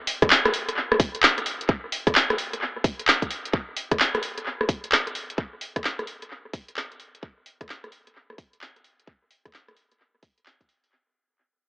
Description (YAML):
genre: UK garage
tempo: 130 BPM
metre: 4/4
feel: swing 65% on 16ths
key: none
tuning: none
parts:
  - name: garage drum kit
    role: drums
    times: 0.1-10.9 s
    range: handclaps, hi-hat, rim click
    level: -21 LUFS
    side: equal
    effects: analog delay
  - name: electronic kick drum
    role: drums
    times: 0.2-10.7 s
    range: none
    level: -24 LUFS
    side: equal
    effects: none
room: wet spring reverb, RT60 2.3 s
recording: echo-heavy mix, AM radio sound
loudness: -21 LUFS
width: side -24 dB against mid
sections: 0.0-10.9 A section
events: fade-out 0.0-10.9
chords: none